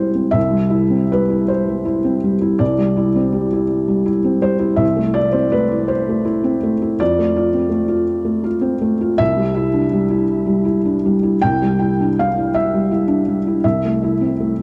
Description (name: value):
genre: neoclassical minimalist piano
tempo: 54 BPM (dotted quarters)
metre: 6/8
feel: rubato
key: C major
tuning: A4 = 440 Hz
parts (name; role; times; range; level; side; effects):
- felt-muted upright piano; solo; 0.0-14.6 s; C2 to G5; -17 LUFS; equal; digital delay
room: moderate plate reverb, RT60 3.1 s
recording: dreamy mix soaked in reverb, cassette tape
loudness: -17 LUFS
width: mono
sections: 0.4-14.6 A section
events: none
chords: 0.0 C; 4.8 Am/C; 7.0 F; 9.2 Cadd9; 13.6 Am/C